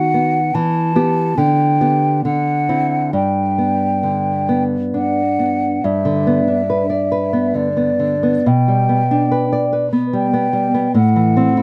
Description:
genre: romantic duo for flute and classical guitar.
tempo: 64-75 BPM.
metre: 3/4.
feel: rubato.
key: G major.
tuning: A4 = 440 Hz.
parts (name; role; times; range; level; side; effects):
mellow hollow concert flute; melody; 0.0-11.6 s; D5 to A5; -21 LUFS; equal; none.
nylon-string guitar; accompaniment; 0.0-11.6 s; G2 to D5; -18 LUFS; equal; none.
room: light reverb.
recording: close, detailed microphones.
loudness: -17 LUFS.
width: mono.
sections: 0.0-5.8 A section; 5.8-11.6 B section.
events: none.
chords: 0.0 B/D#; 0.5 Em; 1.4 G/D; 2.2 D9; 3.1 G; 8.5 G/B; 11.0 Am.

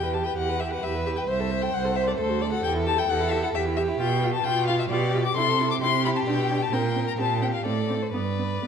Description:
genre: quick classical-period movement for string quartet.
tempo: 132 BPM.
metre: 3/4.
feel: rubato.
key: C major from 4.0 s.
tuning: A4 = 440 Hz.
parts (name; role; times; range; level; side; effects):
warm violin; melody; 0.0-8.7 s; C5 to D6; -27 LUFS; left 8 dB; none.
warm violin; second line; 0.0-8.7 s; F4 to C5; -29 LUFS; left 1 dB; none.
dark viola; accompaniment; 0.0-8.7 s; B3 to C5; -31 LUFS; right 4 dB; none.
rich cello; bass; 0.0-8.7 s; C2 to C3; -27 LUFS; right 4 dB; none.
room: wet scoring stage reverb, RT60 2.0 s.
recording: none.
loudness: -22 LUFS.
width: side -7 dB against mid.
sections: 0.0-8.7 A section.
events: none.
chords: 0.0 Em; 1.3 Am/C; 2.2 D7; 2.6 Em; 4.0 G7/B; 5.4 C; 6.3 G/B; 6.7 C5/Bb; 7.6 Amadd11; 8.1 G.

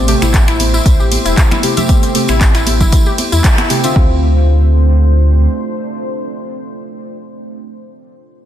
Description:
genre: deep house.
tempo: 116 BPM.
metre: 4/4.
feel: swing 54% on 16ths.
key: D minor.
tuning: A4 = 440 Hz.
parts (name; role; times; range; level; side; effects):
deep dark ambient pad; sustained chords; 0.0-7.1 s; A3 to C5; -22 LUFS; right 1 dB; chorus, built-in reverb, sidechain pumping.
deep mellow chord stab; stabs; 0.0-7.1 s; C3 to G4; -19 LUFS; right 1 dB; chorus, dub echo.
sub bass with octave; bass; 0.0-5.5 s; E1 to E2; -12 LUFS; equal; tube saturation, sidechain pumping.
deep house drum kit; drums; 0.1-3.9 s; finger snaps, handclaps, hi-hat, ride cymbal; -19 LUFS; equal; none.
warbly dusty pluck; arpeggios; 0.2-4.2 s; C4 to E5; -21 LUFS; left 4 dB; chorus, cassette tape, sidechain pumping, tape echo.
congas; percussion; 0.2-3.7 s; none; -24 LUFS; right 3 dB; none.
tambourine; percussion; 0.2-3.9 s; none; -26 LUFS; right 2 dB; none.
electronic kick drum; drums; 0.3-4.1 s; none; -11 LUFS; equal; none.
room: little or no reverb.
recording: dense, heavily limited modern master.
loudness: -10 LUFS.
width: side -11 dB against mid.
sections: 0.0-4.0 A section; 4.0-8.1 B section.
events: drop 0.0-4.0; band accent 3.4.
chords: 0.0 Am7; 4.0 Dm7.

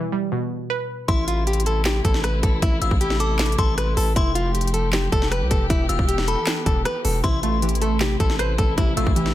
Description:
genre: hip hop, trap.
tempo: 156 BPM.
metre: 4/4.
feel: half-time.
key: A minor.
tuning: A4 = 439 Hz.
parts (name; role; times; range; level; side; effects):
glassy wavetable pluck; accompaniment; 0.0-1.1, 7.2-9.3 s; B2 to C5; -25 LUFS; right 2 dB; chorus.
nylon-string guitar; melody; 1.1-9.3 s; E4 to B4; -25 LUFS; left 1 dB; none.
delicate synth tine bell; second line; 1.1-9.3 s; B5 to E6; -30 LUFS; left 3 dB; chorus, digital delay.
dark studio string section; sustained chords; 1.1-9.3 s; C3 to G4; -31 LUFS; left 1 dB; none.
distorted 808-style bass; bass; 1.1-9.3 s; E1 to C2; -23 LUFS; equal; distortion.
trap drum kit; drums; 1.1-9.3 s; handclaps, hi-hat, kick drum, rim click, snare drum; -22 LUFS; equal; none.
room: little or no reverb.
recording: dense, heavily limited modern master.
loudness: -19 LUFS.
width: side -13 dB against mid.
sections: 0.0-1.1 A section; 1.1-9.3 B section.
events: break 0.0-1.1.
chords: 0.0 Em; 1.1 Am; 4.2 Fadd9; 5.7 Em; 7.2 Am.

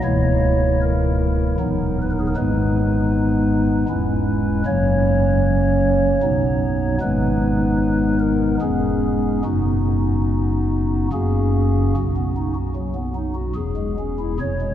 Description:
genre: classical, chorale-style piece for pipe organ.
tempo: 69-79 BPM.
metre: 3/4.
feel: rubato.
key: B major.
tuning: A4 = 440 Hz.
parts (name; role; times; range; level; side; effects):
pipe organ, stopped flute; solo; 0.0-14.7 s; C#1 to C#5; -17 LUFS; equal; none.
room: wet cathedral reverb, RT60 5.5 s.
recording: dark, warm production.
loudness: -17 LUFS.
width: side -11 dB against mid.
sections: 0.0-12.0 A section; 12.0-14.7 B section.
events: none.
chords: 0.0 A#dim/C#; 1.6 B/D#; 2.4 G#m; 3.9 C#m/E; 4.7 F#; 6.2 B; 7.0 G#m; 8.6 C#m7/E; 9.4 B/F#; 11.1 F#; 12.0 B; 13.6 C#m/E.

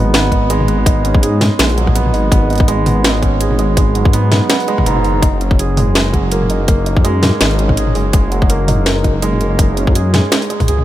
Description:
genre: half-time drum and bass.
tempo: 165 BPM.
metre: 4/4.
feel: swing 56% on 16ths, half-time.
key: G# minor.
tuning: A4 = 438 Hz.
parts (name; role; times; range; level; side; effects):
felt-muted upright piano; arpeggios; 0.0-10.8 s; G#2 to G#4; -17 LUFS; right 3 dB; ping-pong delay.
dark detuned saw bass; bass; 0.0-10.8 s; F#1 to G#2; -15 LUFS; left 1 dB; tube saturation.
drum and bass drum kit; drums; 0.1-10.8 s; hi-hat, snare drum, toms; -17 LUFS; equal; overdrive, studio reverb.
electronic kick drum; drums; 0.3-10.7 s; none; -13 LUFS; left 1 dB; overdrive, studio reverb.
room: digital ambience.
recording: none.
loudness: -11 LUFS.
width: side -13 dB against mid.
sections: 0.0-10.8 A section.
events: kick drops out 10.7.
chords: 0.0 G#m; 5.2 F#add9.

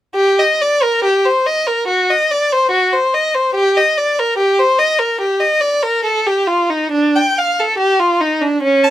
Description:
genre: classical, baroque-style suite movement for unaccompanied violin.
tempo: 72 BPM.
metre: 4/4.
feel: rubato.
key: G minor.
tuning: A4 = 440 Hz.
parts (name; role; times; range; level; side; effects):
rich violin; solo; 0.1-8.9 s; C#4 to A5; -12 LUFS; equal; none.
room: light reverb.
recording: none.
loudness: -12 LUFS.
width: side -13 dB against mid.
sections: 0.2-8.9 A section.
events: none.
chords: none.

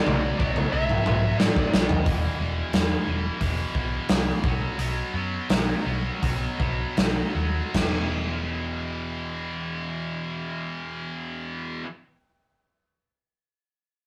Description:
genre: hard rock.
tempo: 76-90 BPM.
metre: 4/4.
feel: straight.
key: unclear.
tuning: A4 = 440 Hz.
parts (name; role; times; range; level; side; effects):
lead guitar through a small cranked amp; melody; 0.0-1.9 s; D5 to E5; -33 LUFS; equal; overdrive, analog delay.
high-gain distorted guitar; riff; 0.0-11.9 s; E2 to B3; -32 LUFS; equal; distortion.
hollow-body short-scale picked electric bass; bass; 0.1-11.8 s; E1 to A2; -33 LUFS; equal; none.
big rock drum kit; drums; 0.1-7.9 s; crash cymbal, hi-hat, kick drum, snare drum, toms; -27 LUFS; equal; none.
room: moderate studio reverb, RT60 0.6 s.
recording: rough rehearsal-room recording, warm saturation.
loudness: -26 LUFS.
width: mono.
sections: 0.0-2.1 A section; 2.1-7.7 B section; 7.7-10.9 C section.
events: drum fill 0.0-2.1; slowing down 2.1-7.7.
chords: 0.0 B5; 2.1 E5; 4.4 B5; 7.7 E5.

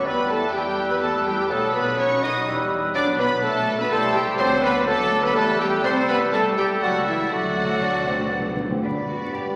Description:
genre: quick classical-period movement for symphony orchestra.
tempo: 124 BPM.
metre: 3/4.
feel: straight.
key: unclear.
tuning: A4 = 438 Hz.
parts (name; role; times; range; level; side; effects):
rich studio violin section; melody; 0.0-9.6 s; D5 to D#6; -32 LUFS; equal; none.
concert flute; second line; 0.0-9.6 s; B4 to F#6; -34 LUFS; equal; none.
warm clarinet; second line; 0.0-9.6 s; E4 to D#5; -32 LUFS; equal; none.
warm oboe; second line; 0.0-9.6 s; A4 to B5; -31 LUFS; equal; none.
clear studio viola section; accompaniment; 0.0-9.5 s; D3 to G4; -37 LUFS; equal; none.
warm bassoon; accompaniment; 0.0-9.6 s; F#3 to D4; -29 LUFS; equal; none.
rich studio cello section; bass; 0.0-9.4 s; E3 to G4; -35 LUFS; equal; none.
rich studio double bass section; bass; 0.0-9.5 s; B1 to G2; -38 LUFS; equal; none.
rich studio violin section; second line; 0.1-9.6 s; E4 to D#5; -32 LUFS; equal; none.
mellow French horn section; sustained chords; 0.1-9.6 s; E3 to G4; -31 LUFS; equal; none.
warm trumpet; stabs; 0.1-8.6 s; E4 to D#5; -30 LUFS; equal; none.
timpani; percussion; 7.3-8.8 s; D3; -31 LUFS; equal; none.
room: wet concert hall reverb, RT60 2.0 s.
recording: vinyl crackle.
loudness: -22 LUFS.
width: mono.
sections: 0.0-8.8 A section.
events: timpani fill 7.3-8.8.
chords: 0.1 Em; 1.5 B7; 2.5 Em; 3.0 Bm; 3.9 C; 4.4 D7; 5.4 Em; 5.9 Am7/C; 6.8 A7/C#; 7.3 D; 8.8 G.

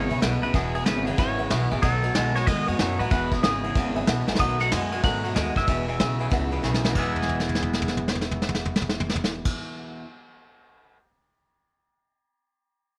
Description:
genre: rockabilly.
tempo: 187 BPM.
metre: 4/4.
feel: swing 63% on 8ths.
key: E major.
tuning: A4 = 435 Hz.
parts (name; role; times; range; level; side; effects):
twangy electric guitar; melody; 0.0-6.6 s; G#4 to G#5; -31 LUFS; equal; phaser, tape echo.
honky-tonk upright piano; accompaniment; 0.0-9.5 s; B4 to B5; -38 LUFS; equal; none.
picked steel-string acoustic guitar; accompaniment; 0.0-10.0 s; E2 to F#4; -36 LUFS; equal; none.
twangy electric guitar; riff; 0.0-10.0 s; E2 to G#4; -32 LUFS; equal; subtle chorus.
upright bass; bass; 0.0-9.5 s; E1 to A2; -32 LUFS; equal; none.
vintage brush drum kit; drums; 0.1-11.0 s; crash cymbal, kick drum, ride cymbal, snare drum, toms; -29 LUFS; equal; none.
room: light reverb, small room ambience.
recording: none.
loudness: -24 LUFS.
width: mono.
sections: 0.0-4.4 A section; 4.4-7.0 B section; 7.0-9.5 C section.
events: drum fill 4.2, 6.6-7.0, 7.1-9.4.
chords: 0.0 E; 1.8 B7; 3.1 E; 4.4 B7; 5.7 E.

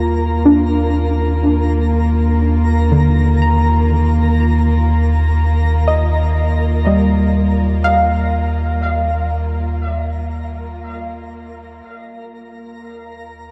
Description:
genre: ambient.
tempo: 61 BPM.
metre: 4/4.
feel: straight.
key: unclear.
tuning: A4 = 439 Hz.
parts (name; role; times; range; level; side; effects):
soft round pluck; arpeggios; 0.0-12.5 s; D3 to Bb5; -21 LUFS; equal; chorus, diffuse ambient delay.
round analog bass; bass; 0.0-13.5 s; Eb2; -18 LUFS; equal; none.
bowed-like drone; drone; 0.0-13.5 s; Bb3 to F4; -26 LUFS; equal; built-in reverb.
twinkling granular texture; texture; 0.0-13.5 s; Bb4 to Bb5; -29 LUFS; equal; built-in reverb.
room: wet huge ambient reverb, RT60 7.4 s.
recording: dark, warm production.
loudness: -15 LUFS.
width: mono.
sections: 0.0-11.9 A section; 11.9-13.5 B section.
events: fade-out on synth drone 0.0-11.9; fade-out on synth texture 0.0-11.9.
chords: 0.0 Eb; 11.9 Eb5.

